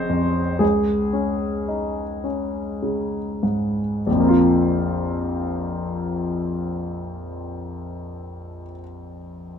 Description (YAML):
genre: neoclassical minimalist piano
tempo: 46-60 BPM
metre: 3/4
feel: rubato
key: Bb minor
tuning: A4 = 440 Hz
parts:
  - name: clear grand piano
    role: solo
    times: 0.0-9.6 s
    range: Bb1 to Db5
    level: -21 LUFS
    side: left 1 dB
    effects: none
room: moderate stone room reverb, RT60 1.4 s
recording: minimal, uncompressed stereo recording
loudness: -20 LUFS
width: side -7 dB against mid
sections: 0.0-4.1 A section; 4.1-7.9 B section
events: slowing down 0.0-4.1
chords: 0.0 Bbmadd9; 0.6 Db5; 4.1 Bbsus2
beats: | 0.61 1.69 2.82 | 4.07 5.35 6.62